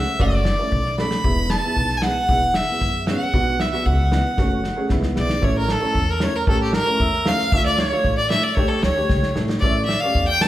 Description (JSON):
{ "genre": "klezmer", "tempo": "115 BPM", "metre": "2/4", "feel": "straight", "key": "A phrygian dominant from 5.4 s", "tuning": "A4 = 440 Hz", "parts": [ { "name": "clear violin", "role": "melody", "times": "0.0-10.5 s", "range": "G4 to B5", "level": "-22 LUFS", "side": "left 1 dB", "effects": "none" }, { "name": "mellow accordion", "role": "second line", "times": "0.0-10.5 s", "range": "A4 to B5", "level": "-28 LUFS", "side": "right 3 dB", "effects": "none" }, { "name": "warm upright piano", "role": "accompaniment", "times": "0.0-10.5 s", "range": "G#3 to A4", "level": "-25 LUFS", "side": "right 1 dB", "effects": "none" }, { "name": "upright bass", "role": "bass", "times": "0.2-10.5 s", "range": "E1 to F#2", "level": "-25 LUFS", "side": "equal", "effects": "none" }, { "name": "natural country drum kit", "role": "drums", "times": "0.2-10.5 s", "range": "kick drum, snare drum", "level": "-23 LUFS", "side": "equal", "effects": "none" } ], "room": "moderate recital hall reverb, RT60 1.7 s", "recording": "recorded in a church or concert hall", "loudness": "-17 LUFS", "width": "side -14 dB against mid", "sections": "0.0-5.4 A section; 5.4-10.5 B section", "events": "drum fill 4.4-5.4, 9.1-9.6", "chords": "0.0 F#m; 1.2 E; 3.3 Bm; 4.4 F#m; 4.9 E7; 5.4 A; 7.5 Dm; 9.6 A" }